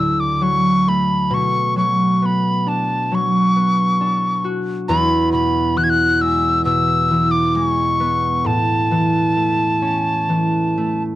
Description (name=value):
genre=celtic folk, Celtic slow air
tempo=67 BPM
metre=4/4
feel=rubato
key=A major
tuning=A4 = 440 Hz
part: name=mellow hollow tin whistle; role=melody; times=0.0-11.0 s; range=A5 to G#6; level=-18 LUFS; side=left 1 dB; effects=none
part: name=concert harp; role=accompaniment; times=0.0-11.2 s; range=D2 to F#4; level=-18 LUFS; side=equal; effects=none
room=little or no reverb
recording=dry, close 1970s-style studio recording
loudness=-15 LUFS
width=side -15 dB against mid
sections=0.0-11.2 A section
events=none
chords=0.0 D; 1.3 Bmadd9; 4.9 E6; 8.5 A